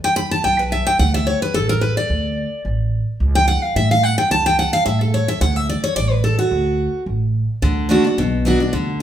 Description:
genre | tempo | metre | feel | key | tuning
bluegrass | 217 BPM | 4/4 | swing 54% on 8ths | D major | A4 = 440 Hz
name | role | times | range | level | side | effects
picked steel-string acoustic guitar | accompaniment | 0.0-9.0 s | B2 to B5 | -17 LUFS | equal | none
upright bass | bass | 0.0-9.0 s | A1 to A2 | -20 LUFS | right 1 dB | none
room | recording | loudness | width
moderate large studio reverb, RT60 1.1 s | band playing live in one room | -16 LUFS | side -10 dB against mid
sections
0.0-7.6 A section; 7.6-9.0 B section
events
steel-string acoustic guitar solo 0.0-7.6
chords
0.0 E5; 1.0 D5; 3.2 A/C#; 5.4 D; 8.2 Bm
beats
0.17 0.45 0.72 | 1.00 1.27 1.55 1.82 | 2.10 2.38 2.65 2.93 | 3.20 3.48 3.75 4.03 | 4.31 4.58 4.86 5.13 | 5.41 5.69 5.96 6.24 | 6.52 6.79 7.07 7.34 | 7.62 7.90 8.18 8.45 | 8.73 9.01

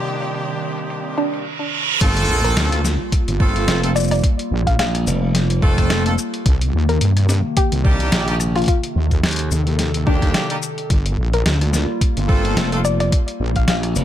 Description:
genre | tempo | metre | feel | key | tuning
glitch hop | 108 BPM | 4/4 | swing 56% on 16ths | G minor | A4 = 437 Hz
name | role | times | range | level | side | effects
warbly tape-like pad | sustained chords | 0.0-14.0 s | C3 to A4 | -26 LUFS | equal | chorus, built-in reverb, phaser, sidechain pumping
brilliant horn section | stabs | 0.0-12.8 s | C3 to A4 | -24 LUFS | right 1 dB | sidechain pumping, digital delay
boom bap sampler-style drum kit | drums | 0.2-14.0 s | crash cymbal, hi-hat, rim click, shaker, snare drum | -23 LUFS | left 1 dB | low-pass filter on hats, low-pass filter on cymbals, low-pass filter on snare, low-pass filter on perc
reverse cymbal and sub drop | sound effects | 1.3-4.2 s | none | -24 LUFS | right 4 dB | none
woody wave-folded pluck | melody | 1.2-13.8 s | D4 to F5 | -25 LUFS | left 2 dB | wide subtle chorus, cassette tape, digital delay
wobble bass | bass | 2.0-13.7 s | G1 to G2 | -18 LUFS | equal | chorus, tube saturation
electronic kick drum | drums | 2.0-13.7 s | none | -17 LUFS | equal | none
glassy slap bass | bass | 3.7-14.0 s | F1 to Eb2 | -19 LUFS | equal | tube saturation
room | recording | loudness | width
little or no reverb | none | -16 LUFS | side -11 dB against mid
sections
0.0-2.0 A section; 2.0-14.0 B section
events
filter sweep on ambient pad 0.0-2.0; reverse cymbal 1.3-2.0; drop 2.0-14.0; impact 2.0-4.2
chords
0.0 Cm7; 2.0 Gm11; 6.5 Cm7; 10.9 Gm11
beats
0.35 0.90 1.46 | 2.01 2.57 3.12 3.68 | 4.24 4.79 5.35 5.90 | 6.46 7.01 7.57 8.12 | 8.68 9.23 9.79 10.35 | 10.90 11.46 12.01 12.57 | 13.12 13.68

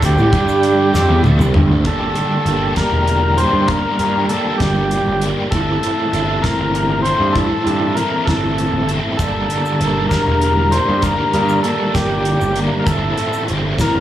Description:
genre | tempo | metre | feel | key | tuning
psychedelic rock | 65 BPM (dotted quarters) | 6/8 | straight | G dorian | A4 = 441 Hz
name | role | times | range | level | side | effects
combo organ | melody | 0.0-14.0 s | G4 to C5 | -19 LUFS | equal | slapback echo
bright tonewheel organ | sustained chords | 0.0-1.8 s | D3 to A4 | -27 LUFS | right 5 dB | none
overdriven semi-hollow guitar | riff | 0.0-14.0 s | G2 to Bb4 | -18 LUFS | equal | rotary speaker
growling picked electric bass | bass | 0.0-14.0 s | E1 to G2 | -19 LUFS | right 1 dB | overdrive
tanpura | drone | 0.0-8.5 s | G2 to G3 | -31 LUFS | equal | none
damped 70s drum kit | drums | 0.0-13.9 s | hi-hat, kick drum, snare drum, toms | -21 LUFS | equal | none
egg shaker | percussion | 0.0-1.5, 9.2-13.9 s | none | -39 LUFS | left 5 dB | none
room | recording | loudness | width
light reverb, small room ambience | studio reverb | -14 LUFS | side -12 dB against mid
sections
0.0-1.9 A section; 1.9-14.0 B section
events
drum fill 0.9-1.9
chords
0.3 G5; 0.9 Am7; 1.9 Gmadd9; 5.5 Am7/G; 9.2 Gmadd9; 12.9 Am7/G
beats
| 0.03 0.94 | 1.86 2.78 | 3.69 4.61 | 5.53 6.45 | 7.36 8.28 | 9.20 10.12 | 11.03 11.95 | 12.87 13.79

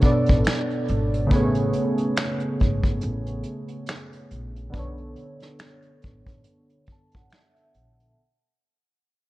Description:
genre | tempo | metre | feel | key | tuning
lo-fi hip hop | 70 BPM | 4/4 | swing 58% on 16ths | unclear | A4 = 440 Hz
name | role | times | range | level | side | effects
warbly lo-fi synth keys | accompaniment | 0.0-8.2 s | B2 to A5 | -25 LUFS | right 1 dB | chorus, cassette tape, low-pass filter
vintage brush drum kit | drums | 0.0-8.2 s | finger snaps, hi-hat, kick drum, snare drum | -23 LUFS | equal | none
upright bass | bass | 0.3-8.1 s | G#1 to B1 | -28 LUFS | equal | none
room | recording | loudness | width
little or no reverb | cassette tape | -21 LUFS | side -18 dB against mid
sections
0.0-8.2 A section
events
fade-out 0.0-8.2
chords
0.0 Bm7; 1.3 Amaj7; 4.7 Bm7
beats
0.45 | 1.31 2.17 3.03 3.88 | 4.74 5.60 6.45 7.31

